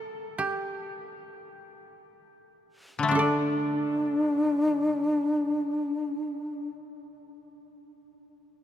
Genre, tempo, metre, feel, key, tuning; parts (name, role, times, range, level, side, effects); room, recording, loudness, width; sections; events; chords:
japanese traditional, Japanese chamber music; free time; A4 = 439 Hz
koto; second line; 0.0-6.8 s; D4 to D5; -32 LUFS; right 2 dB
koto; accompaniment; 3.0-6.7 s; D3 to D4; -30 LUFS; left 3 dB
breathy bright shakuhachi; melody; 3.1-6.7 s; D4; -26 LUFS; left 1 dB
moderate cathedral reverb, RT60 5.7 s; -25 LUFS; side -11 dB against mid
0.0-3.1 A section; 3.1-8.6 B section
slowing down 0.0-3.1